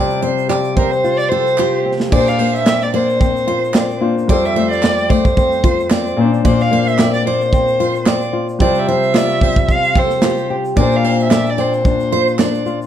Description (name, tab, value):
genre	acoustic pop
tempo	111 BPM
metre	4/4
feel	swing 55% on 16ths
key	unclear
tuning	A4 = 440 Hz
part	clear concert grand piano	accompaniment	0.0-12.9 s	G3 to C5	-23 LUFS	left 3 dB	none
part	nylon-string guitar	accompaniment	0.0-12.9 s	F2 to G4	-18 LUFS	left 4 dB	none
part	picked steel-string acoustic guitar	arpeggios	0.0-12.8 s	G4 to D5	-21 LUFS	right 4 dB	none
part	modern studio drum kit	drums	0.1-12.9 s	crash cymbal, kick drum, rim click, shaker, snare drum	-16 LUFS	right 1 dB	none
part	group handclap	percussion	0.5-12.5 s	none	-28 LUFS	right 5 dB	none
part	dark violin	melody	0.8-12.7 s	Bb4 to F5	-18 LUFS	right 1 dB	none
room	moderate studio reverb, RT60 0.6 s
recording	dark, warm production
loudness	-13 LUFS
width	side -10 dB against mid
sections	0.0-2.1 A section; 2.1-12.9 B section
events	drum fill 1.6-2.1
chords	0.0 Csus4; 2.1 Bbadd9; 4.3 Fadd9; 6.2 Bbadd9; 8.6 Csus4; 10.8 Bbadd9